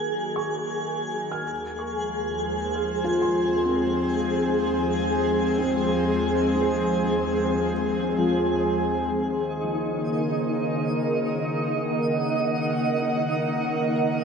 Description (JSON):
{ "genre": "ambient", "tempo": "62 BPM", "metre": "4/4", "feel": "straight", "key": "Eb dorian", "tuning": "A4 = 443 Hz", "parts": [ { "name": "airy breathy pad", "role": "sustained chords", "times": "0.0-14.2 s", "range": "Eb2 to Gb5", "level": "-25 LUFS", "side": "left 1 dB", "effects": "chorus, shimmer reverb" }, { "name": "felt-muted upright piano", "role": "arpeggios", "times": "0.0-14.2 s", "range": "F3 to F6", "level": "-28 LUFS", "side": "left 1 dB", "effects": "analog delay, shimmer reverb" }, { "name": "twinkling granular texture", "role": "texture", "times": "0.0-14.2 s", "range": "Eb4 to Ab5", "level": "-28 LUFS", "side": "right 2 dB", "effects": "built-in reverb, shimmer reverb" } ], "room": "wet spring reverb, RT60 2.8 s", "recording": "echo-heavy mix, nothing above 10.5 kHz", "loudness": "-22 LUFS", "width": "side -6 dB against mid", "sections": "0.0-9.1 A section; 9.1-14.2 B section", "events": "fade-in on analog synth pad 0.0-9.1; fade-in on felt piano 0.0-9.1", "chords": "0.0 Ebm; 1.4 Fm/Eb; 9.1 Ebm7" }